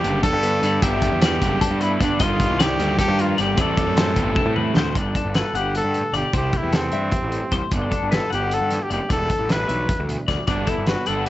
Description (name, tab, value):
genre	math rock and midwest emo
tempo	305 BPM (eighths)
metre	7/8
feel	straight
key	G major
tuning	A4 = 440 Hz
part	warm trumpet	melody	0.0-11.3 s	C4 to B4	-24 LUFS	equal	none
part	mellow electric guitar	accompaniment	0.0-11.3 s	D2 to G4	-30 LUFS	right 4 dB	none
part	twelve-string electric guitar	arpeggios	0.0-11.3 s	G4 to F#5	-27 LUFS	left 7 dB	phaser, digital delay
part	crunchy overdriven guitar	riff	0.0-5.0, 10.5-11.3 s	G2 to E4	-26 LUFS	right 1 dB	none
part	fuzz picked electric bass	bass	0.0-11.3 s	E1 to A2	-25 LUFS	equal	overdrive
part	loose indie drum kit	drums	0.0-11.3 s	hi-hat, kick drum, snare drum, toms	-23 LUFS	equal	none
room	light reverb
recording	nothing above 7.9 kHz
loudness	-18 LUFS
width	side -14 dB against mid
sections	0.0-5.0 A section; 5.0-11.3 B section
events	drum fill 4.4-5.0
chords	0.0 Gmaj7; 2.2 Ebmaj7/G; 3.6 Am7; 5.0 Gmaj7; 6.3 C6; 7.7 Gmaj7; 9.1 Em7; 10.5 Gmaj7